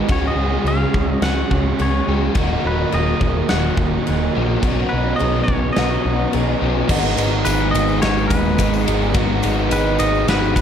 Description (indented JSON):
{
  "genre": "rock, shoegaze and dream pop",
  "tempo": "106 BPM",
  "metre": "4/4",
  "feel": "straight",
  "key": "unclear",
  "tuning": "A4 = 438 Hz",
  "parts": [
    { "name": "warbly tape-like pad", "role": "sustained chords", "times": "0.0-10.6 s", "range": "Gb4 to Eb6", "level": "-30 LUFS", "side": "right 1 dB", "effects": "chorus, built-in reverb" },
    { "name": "picked twelve-string acoustic guitar", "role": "arpeggios", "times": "0.0-10.6 s", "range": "Gb4 to Ab4", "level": "-30 LUFS", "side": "left 9 dB", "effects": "ensemble chorus, slapback echo" },
    { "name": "overdriven electric guitar", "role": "riff", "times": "0.0-10.6 s", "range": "Eb2 to Ab4", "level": "-22 LUFS", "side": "right 10 dB", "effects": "reverse reverb" },
    { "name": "overdriven semi-hollow guitar", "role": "riff", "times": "0.0-10.6 s", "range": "Eb2 to Ab4", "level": "-23 LUFS", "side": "left 9 dB", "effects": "analog chorus" },
    { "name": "twangy electric guitar", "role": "melody", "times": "0.1-10.6 s", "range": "Cb5 to Gb5", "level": "-26 LUFS", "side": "left 1 dB", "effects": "slapback echo" },
    { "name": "growling picked electric bass", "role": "bass", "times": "0.1-10.6 s", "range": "Eb1 to Db2", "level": "-22 LUFS", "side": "equal", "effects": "overdrive" },
    { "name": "huge arena drum kit", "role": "drums", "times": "0.1-10.6 s", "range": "crash cymbal, kick drum, ride cymbal, snare drum", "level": "-23 LUFS", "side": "equal", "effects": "none" },
    { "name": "tambourine", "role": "percussion", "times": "7.0-10.6 s", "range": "none", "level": "-38 LUFS", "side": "right 12 dB", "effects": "none" }
  ],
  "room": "light reverb, small room ambience",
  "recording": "none",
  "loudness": "-16 LUFS",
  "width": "side -8 dB against mid",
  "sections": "0.0-6.9 A section; 6.9-10.6 B section",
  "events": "none",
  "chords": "0.1 Dbsus4; 2.4 Ebm; 4.6 Badd9; 6.9 Abm"
}